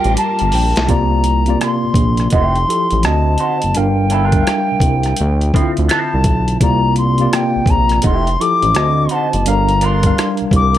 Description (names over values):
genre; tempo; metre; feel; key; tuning
R&B, neo-soul; 84 BPM; 4/4; swing 63% on 16ths; G dorian; A4 = 439 Hz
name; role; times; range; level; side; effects
bright reedy bansuri; melody; 0.0-10.8 s; G5 to D6; -18 LUFS; left 2 dB; none
tine electric piano; accompaniment; 0.0-10.8 s; C3 to Bb5; -19 LUFS; equal; overdrive, fast stereo tremolo
string machine, full ensemble; sustained chords; 0.0-0.9 s; G3 to Bb4; -26 LUFS; left 1 dB; ensemble chorus
boom bap sampler-style drum kit; drums; 0.0-10.8 s; hi-hat, kick drum, rim click, snare drum; -18 LUFS; equal; none
smooth synth bass; bass; 0.1-10.8 s; F1 to D2; -16 LUFS; equal; none
electric guitar through a small old amp; second line; 2.3-10.2 s; F3 to C5; -22 LUFS; right 3 dB; wah
room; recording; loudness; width
little or no reverb; none; -12 LUFS; side -12 dB against mid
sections
0.9-10.8 A section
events
tine electric piano fill 0.0-0.9; drum fill 0.2-0.9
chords
0.0 Gm9; 0.9 C9sus4; 2.3 Fmaj9; 3.0 D7b9; 3.7 Gm7; 5.2 Dm9; 6.6 C9sus4; 8.0 Fmaj9; 8.7 D7b9; 9.5 Gm7